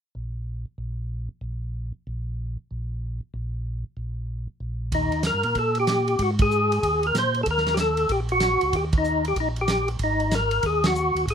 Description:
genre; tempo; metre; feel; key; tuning
soul jazz organ trio; 189 BPM; 4/4; swing 64% on 8ths; unclear; A4 = 441 Hz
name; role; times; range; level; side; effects
mellow tonewheel organ; bass; 0.1-11.3 s; Ab1 to Bb2; -28 LUFS; equal; overdrive, chorus vibrato, slow rotary speaker
percussive tonewheel organ; melody; 4.9-11.3 s; Eb4 to C5; -22 LUFS; left 1 dB; slow rotary speaker, overdrive, chorus vibrato
warm soul drum kit; drums; 4.9-11.3 s; hi-hat, kick drum, ride cymbal, snare drum; -28 LUFS; right 2 dB; none
room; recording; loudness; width
light reverb; minimal, uncompressed stereo recording; -22 LUFS; side -7 dB against mid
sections
0.0-4.9 A section; 4.9-11.3 B section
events
band accent 6.4, 8.9, 10.8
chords
0.0 N.C.; 4.9 Eb; 6.2 Absus2; 7.5 Eb; 10.0 Absus2

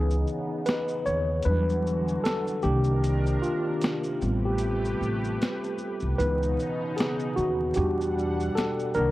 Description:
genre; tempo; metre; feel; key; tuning
lo-fi hip hop; 76 BPM; 4/4; swing 59% on 16ths; unclear; A4 = 441 Hz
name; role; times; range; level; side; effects
mellow tine electric piano; accompaniment; 0.0-9.1 s; Eb3 to C#5; -27 LUFS; equal; overdrive, medium stereo tremolo
lush unison pad; sustained chords; 0.0-9.1 s; B2 to F#5; -34 LUFS; equal; chorus, phaser
upright bass; bass; 0.0-9.1 s; A1 to E2; -27 LUFS; equal; none
boom bap sampler-style drum kit; drums; 0.1-9.1 s; hi-hat, shaker, snare drum; -31 LUFS; equal; none
room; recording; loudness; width
light reverb; worn, warbling old tape, cassette tape, vinyl crackle, warbly pitch drift; -24 LUFS; side -17 dB against mid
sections
0.0-9.1 A section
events
break 0.0-9.1; tine electric piano solo 0.0-9.1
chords
0.0 C#m9; 1.5 Em9; 2.6 Cm9; 4.2 Am9; 6.2 C#m9; 7.8 Em9

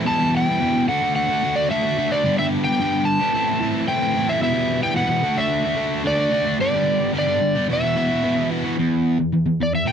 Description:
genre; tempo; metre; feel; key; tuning
rock; 110 BPM; 4/4; straight; E minor; A4 = 440 Hz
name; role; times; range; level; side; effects
distorted electric guitar; riff; 0.0-9.9 s; E2 to G4; -20 LUFS; equal; distortion
overdriven slide guitar; melody; 0.1-9.9 s; D5 to A5; -21 LUFS; equal; none
room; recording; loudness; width
light reverb; dry, close 1970s-style studio recording; -18 LUFS; side -8 dB against mid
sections
0.0-8.8 A section; 8.8-9.9 B section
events
none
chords
0.1 Em; 0.9 D; 2.2 G; 3.3 Am; 4.4 Em; 5.2 D; 6.6 G; 7.7 Esus2; 8.8 N.C.

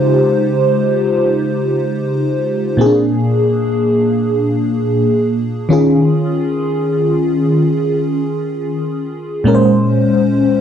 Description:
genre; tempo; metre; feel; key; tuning
R&B; free time; none; none; unclear; A4 = 440 Hz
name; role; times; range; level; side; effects
FM electric piano with soft pad layer; solo; 0.0-10.6 s; Bb2 to C5; -12 LUFS; equal; chorus, phaser
room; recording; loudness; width
little or no reverb; dry, close 1970s-style studio recording; -13 LUFS; side -8 dB against mid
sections
0.0-9.4 A section; 9.4-10.6 B section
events
none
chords
0.0 Dbmaj9#11; 2.8 Bb7; 5.7 Eb9sus4; 9.4 Bbm9

